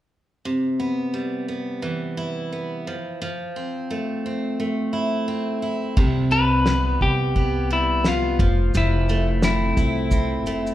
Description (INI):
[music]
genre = acoustic pop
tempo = 87 BPM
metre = 4/4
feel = swing 60% on 16ths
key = C major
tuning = A4 = 440 Hz
[part]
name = picked steel-string acoustic guitar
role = accompaniment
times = 0.5-10.7 s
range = C3 to E4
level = -24 LUFS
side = right 1 dB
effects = none
[part]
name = upright bass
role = bass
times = 6.0-10.7 s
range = F1 to C2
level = -23 LUFS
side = equal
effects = none
[part]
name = cloth-damped thuddy drum kit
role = drums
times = 6.0-10.7 s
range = crash cymbal, kick drum, shaker, snare drum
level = -23 LUFS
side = equal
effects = none
[part]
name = clean electric guitar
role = melody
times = 6.3-10.7 s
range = E4 to B4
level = -23 LUFS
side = left 3 dB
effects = spring reverb
[sound]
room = moderate large studio reverb, RT60 1.2 s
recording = band playing live in one room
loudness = -20 LUFS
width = side -13 dB against mid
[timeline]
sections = 0.4-6.0 A section; 6.0-10.7 B section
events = none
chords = 0.4 Cmaj7; 2.9 Fmaj7; 6.0 C5; 8.4 Fmaj7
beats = | 0.45 1.14 1.83 2.52 | 3.21 3.90 4.59 5.29 | 5.97 6.67 7.35 8.04 | 8.73 9.42 10.11